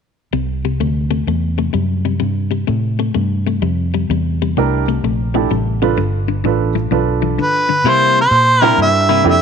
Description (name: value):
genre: electric blues shuffle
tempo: 128 BPM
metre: 4/4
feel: swing 66% on 8ths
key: C mixolydian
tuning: A4 = 440 Hz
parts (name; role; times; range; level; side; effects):
- clean electric guitar; riff; 0.3-9.3 s; G2 to E4; -20 LUFS; left 12 dB; none
- vintage muted fingered electric bass; bass; 0.3-9.4 s; G1 to C3; -18 LUFS; right 1 dB; none
- warm grand piano; accompaniment; 4.6-9.4 s; D4 to B4; -18 LUFS; right 11 dB; none
- clear harmonica; melody; 7.4-9.4 s; B4 to E5; -12 LUFS; right 1 dB; overdrive, slapback echo
room: light reverb, small room ambience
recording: 1960s-style stereo with parts hard left and right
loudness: -13 LUFS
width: side -6 dB against mid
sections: 0.3-7.8 A section; 7.8-9.4 B section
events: none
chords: 0.3 C7; 6.0 G7; 7.8 C7